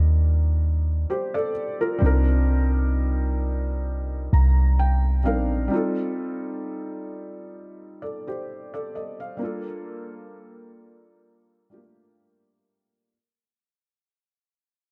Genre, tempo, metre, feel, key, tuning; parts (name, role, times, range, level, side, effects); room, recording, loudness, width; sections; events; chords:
contemporary R&B; 65 BPM; 4/4; swing 54% on 16ths; G minor; A4 = 439 Hz
felt-muted upright piano; accompaniment; 0.0-13.1 s; G3 to Bb5; -31 LUFS; equal
clean 808-style bass; bass; 0.0-5.7 s; Bb1 to Eb2; -22 LUFS; equal
studio reverb; dark, warm production; -24 LUFS; mono
0.0-5.7 A section; 5.7-13.1 B section
felt piano fill 3.9-5.7; fade-out 5.7-13.1
0.0 Ebmaj7; 2.0 Cm7; 5.7 F7; 9.4 Gm7